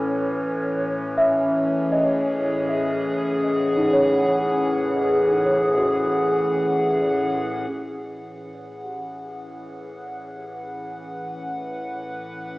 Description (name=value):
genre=ambient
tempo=free time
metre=none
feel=none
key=A lydian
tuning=A4 = 440 Hz
part: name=warbly tape-like pad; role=sustained chords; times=0.0-12.6 s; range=A2 to F#5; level=-22 LUFS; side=equal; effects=chorus, built-in reverb, phaser
part: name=small celesta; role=arpeggios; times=1.2-9.6 s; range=D#4 to E5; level=-24 LUFS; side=equal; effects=analog delay
room=wet echo chamber reverb, RT60 2.3 s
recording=echo-heavy mix, cassette tape, small speaker sound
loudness=-19 LUFS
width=side -20 dB against mid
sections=0.0-7.7 A section; 7.7-12.6 B section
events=fade-out on celesta 0.0-7.7; fade-in on ambient pad 7.7-12.6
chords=0.0 F#m7/A; 7.7 A6